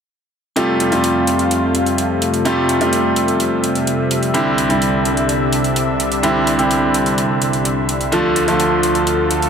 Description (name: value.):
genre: EDM, festival progressive house.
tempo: 127 BPM.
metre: 4/4.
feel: straight.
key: F major.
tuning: A4 = 442 Hz.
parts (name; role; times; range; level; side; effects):
bright concert grand piano; accompaniment; 0.6-9.5 s; C3 to F4; -16 LUFS; right 1 dB; vintage 12-bit sampler grit, dub echo.
lush unison pad; sustained chords; 0.6-9.5 s; C2 to E5; -19 LUFS; left 1 dB; chorus.
electronic hi-hat; drums; 0.6-9.5 s; none; -24 LUFS; right 1 dB; overdrive, small room ambience.
room: moderate lush hall reverb, RT60 2.0 s.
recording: none.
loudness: -14 LUFS.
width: side -7 dB against mid.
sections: 0.6-9.5 A section.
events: none.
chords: 0.6 Fadd9; 4.3 Cadd9; 8.1 Dm.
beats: | 0.56 1.04 1.51 1.98 | 2.46 2.93 3.40 3.87 | 4.34 4.82 5.29 5.76 | 6.23 6.71 7.18 7.65 | 8.12 8.60 9.07.